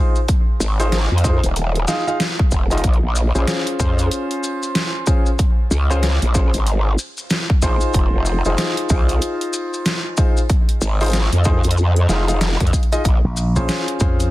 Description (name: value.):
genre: glitch hop.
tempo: 94 BPM.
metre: 4/4.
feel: swing 60% on 16ths.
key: Bb minor.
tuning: A4 = 440 Hz.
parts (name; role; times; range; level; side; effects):
warm concert grand piano; stabs; 0.0-14.3 s; Db4 to F5; -24 LUFS; left 1 dB; sidechain pumping, low-pass filter, dub echo.
maracas; percussion; 0.2-14.3 s; none; -30 LUFS; left 2 dB; none.
dubstep drum kit; drums; 0.3-14.3 s; hi-hat, snare drum; -22 LUFS; equal; overdrive.
electronic kick drum; drums; 0.3-14.2 s; none; -17 LUFS; equal; overdrive.
growl bass; bass; 0.6-13.2 s; Eb1 to F2; -17 LUFS; equal; chorus.
slap bass with an envelope filter; bass; 13.2-14.3 s; Bb1 to F2; -18 LUFS; equal; none.
room: little or no reverb.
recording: dense, heavily limited modern master, vinyl crackle.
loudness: -16 LUFS.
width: side -17 dB against mid.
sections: 0.0-14.3 A section.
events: none.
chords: 0.0 Fm7; 2.8 Bbm9; 7.9 Fm7; 13.1 Bbm9.